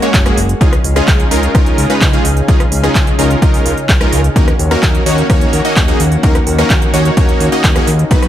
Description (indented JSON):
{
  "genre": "EDM, festival progressive house",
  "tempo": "128 BPM",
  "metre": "4/4",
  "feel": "straight",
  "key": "Eb minor",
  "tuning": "A4 = 440 Hz",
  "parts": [
    { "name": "lush unison pad", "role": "sustained chords", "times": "0.0-8.3 s", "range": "Db3 to F5", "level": "-21 LUFS", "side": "equal", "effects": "chorus, sidechain pumping" },
    { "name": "supersaw stab", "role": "riff", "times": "0.0-8.2 s", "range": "F#3 to Eb5", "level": "-16 LUFS", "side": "equal", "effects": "sidechain pumping, dub echo" },
    { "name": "big-room dance drum kit", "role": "drums", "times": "0.0-8.3 s", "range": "handclaps, hi-hat, rim click", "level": "-18 LUFS", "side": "right 1 dB", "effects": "overdrive" },
    { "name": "fat analog bass", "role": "bass", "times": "0.1-8.3 s", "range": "Gb1 to Eb2", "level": "-16 LUFS", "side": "equal", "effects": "sidechain pumping" },
    { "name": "electronic kick drum", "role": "drums", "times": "0.1-8.2 s", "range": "none", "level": "-12 LUFS", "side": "equal", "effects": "overdrive" }
  ],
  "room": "digital ambience",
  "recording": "none",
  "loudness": "-9 LUFS",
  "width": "side -11 dB against mid",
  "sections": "0.0-8.3 A section",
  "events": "none",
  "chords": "0.0 Gbadd9; 0.6 Dbadd9; 4.4 Ebm7",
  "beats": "0.14 | 0.61 1.08 1.55 2.02 | 2.48 2.95 3.42 3.89 | 4.36 4.83 5.30 5.77 | 6.23 6.70 7.17 7.64 | 8.11"
}